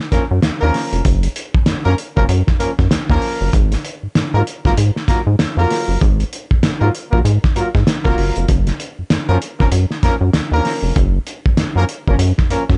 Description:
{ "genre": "funk", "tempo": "97 BPM", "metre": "4/4", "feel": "swing 60% on 16ths", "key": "unclear", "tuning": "A4 = 441 Hz", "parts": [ { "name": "cloth-damped thuddy drum kit", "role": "drums", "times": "0.0-12.8 s", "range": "hi-hat, kick drum, snare drum", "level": "-19 LUFS", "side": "equal", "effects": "none" }, { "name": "warm horn section", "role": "second line", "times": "0.1-12.6 s", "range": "F3 to Bb4", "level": "-23 LUFS", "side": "equal", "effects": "plate reverb" }, { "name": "rubbery square bass", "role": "bass", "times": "0.1-12.8 s", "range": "F1 to Ab2", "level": "-18 LUFS", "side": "equal", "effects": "none" } ], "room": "light reverb", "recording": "dark, warm production, nothing above 10.5 kHz", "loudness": "-16 LUFS", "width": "mono", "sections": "0.0-12.8 A section", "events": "none", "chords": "0.0 Gb5; 3.5 Absus2; 8.5 Gb5", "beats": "0.43 | 1.05 1.67 2.29 2.91 | 3.53 4.15 4.77 5.39 | 6.01 6.63 7.25 7.87 | 8.48 9.10 9.72 10.34 | 10.96 11.58 12.20" }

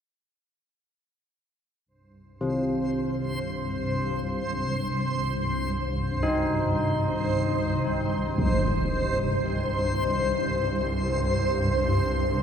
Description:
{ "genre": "dark ambient drone", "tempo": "free time", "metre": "none", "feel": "none", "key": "C minor", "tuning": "A4 = 441 Hz", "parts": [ { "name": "swarming drone", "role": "drone", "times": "2.8-12.4 s", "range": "C2 to G2", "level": "-28 LUFS", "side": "equal", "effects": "built-in reverb" }, { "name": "backwards swelling texture", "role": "texture", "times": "2.5-12.4 s", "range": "C5", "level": "-29 LUFS", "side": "equal", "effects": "built-in reverb, shimmer reverb" }, { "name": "carillon bells", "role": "arpeggios", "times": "2.4-12.4 s", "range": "C3 to Eb4", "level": "-30 LUFS", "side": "left 1 dB", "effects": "diffuse ambient delay, shimmer reverb" }, { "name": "impact", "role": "percussion", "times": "8.4-8.6 s", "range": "none", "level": "-31 LUFS", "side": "right 1 dB", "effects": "low-pass filter on sfx" } ], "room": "wet cathedral reverb, RT60 5.5 s", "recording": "none", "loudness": "-24 LUFS", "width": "side -8 dB against mid", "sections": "1.9-12.4 A section", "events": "none", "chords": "1.9 Cm", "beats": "free time" }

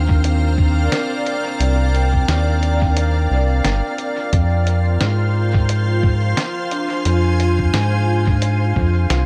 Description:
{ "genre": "ambient dub", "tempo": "88 BPM", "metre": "4/4", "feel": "swing 57% on 16ths", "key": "C minor", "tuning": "A4 = 440 Hz", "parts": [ { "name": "soft additive organ-like pad", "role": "sustained chords", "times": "0.0-9.3 s", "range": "C4 to Ab5", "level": "-24 LUFS", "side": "equal", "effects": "ensemble chorus, built-in reverb" }, { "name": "vibraphone with medium hard mallets", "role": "arpeggios", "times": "0.0-9.3 s", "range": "D4 to G5", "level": "-30 LUFS", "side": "equal", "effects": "tape echo" }, { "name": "round analog bass", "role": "bass", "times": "0.0-9.3 s", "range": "G1 to Ab2", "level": "-19 LUFS", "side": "equal", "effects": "none" }, { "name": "electronic kick drum", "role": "drums", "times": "0.1-8.9 s", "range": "none", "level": "-20 LUFS", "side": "equal", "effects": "small room ambience" }, { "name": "lo-fi sampler-style drum kit", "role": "drums", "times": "0.2-9.3 s", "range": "hi-hat, snare drum", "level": "-27 LUFS", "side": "equal", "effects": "small room ambience, dub echo" } ], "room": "light reverb, digital ambience", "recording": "none", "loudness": "-18 LUFS", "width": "mono", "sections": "0.0-9.3 A section", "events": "break 3.0-4.3", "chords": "0.0 Cm9; 4.3 Fm", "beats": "0.24 0.92 | 1.60 2.29 2.97 3.65 | 4.33 5.01 5.70 6.38 | 7.06 7.74 8.42 9.11" }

